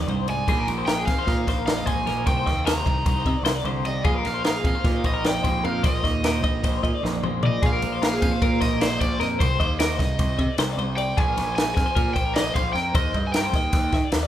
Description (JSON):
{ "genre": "math rock and midwest emo", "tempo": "303 BPM (eighths)", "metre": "9/8", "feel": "straight", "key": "unclear", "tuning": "A4 = 440 Hz", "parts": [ { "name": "twelve-string electric guitar", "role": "accompaniment", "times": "0.0-9.4 s", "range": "F2 to Eb4", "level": "-29 LUFS", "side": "right 4 dB", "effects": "none" }, { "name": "twelve-string electric guitar", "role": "arpeggios", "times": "0.0-14.3 s", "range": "Ab4 to Eb5", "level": "-28 LUFS", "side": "left 4 dB", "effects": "tremolo" }, { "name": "growling picked electric bass", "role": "bass", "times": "0.0-14.3 s", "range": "Bb1 to Eb3", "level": "-28 LUFS", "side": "equal", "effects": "overdrive" }, { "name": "compact cocktail drum kit", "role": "drums", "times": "0.1-14.2 s", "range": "crash cymbal, kick drum, ride cymbal, snare drum, toms", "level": "-24 LUFS", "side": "equal", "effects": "none" }, { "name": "crunchy overdriven guitar", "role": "melody", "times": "0.3-14.1 s", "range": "C5 to Bb5", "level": "-28 LUFS", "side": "right 1 dB", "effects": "none" } ], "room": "light reverb", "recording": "band playing live in one room", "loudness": "-20 LUFS", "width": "side -11 dB against mid", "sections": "0.0-7.6 A section; 7.6-14.3 B section", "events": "drum fill 7.0-7.6", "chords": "0.5 Bb7sus4; 2.3 Cm7; 4.0 Bb7sus4; 9.4 Cm; 11.2 Bb7(no3); 12.9 Eb", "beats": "0.07 0.27 | 0.47 0.67 0.87 1.07 1.26 1.46 1.66 1.86 2.06 | 2.26 2.46 2.66 2.85 3.05 3.25 3.45 3.65 3.85 | 4.05 4.25 4.45 4.64 4.84 5.04 5.24 5.44 5.64 | 5.83 6.03 6.23 6.43 6.63 6.83 7.03 7.22 7.42 | 7.62 7.82 8.01 8.21 8.41 8.61 8.80 9.00 9.20 | 9.40 9.60 9.79 9.99 10.19 10.38 10.58 10.78 10.97 | 11.17 11.37 11.57 11.76 11.96 12.16 12.36 12.55 12.75 | 12.95 13.14 13.34 13.54 13.73 13.93 14.13" }